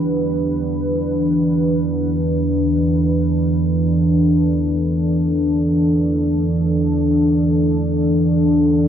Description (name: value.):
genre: dark ambient drone.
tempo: free time.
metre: none.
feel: none.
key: E minor.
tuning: A4 = 440 Hz.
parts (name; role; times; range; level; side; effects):
dark analog pad; sustained chords; 0.0-8.9 s; E3 to B4; -17 LUFS; equal; chorus.
deep rumbling drone; drone; 0.0-8.9 s; E2 to E3; -20 LUFS; right 1 dB; built-in reverb.
room: wet cathedral reverb, RT60 5.2 s.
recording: worn, warbling old tape, cassette tape, warbly pitch drift.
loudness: -15 LUFS.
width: side -9 dB against mid.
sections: 0.0-8.9 A section.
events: none.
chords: 0.0 Em.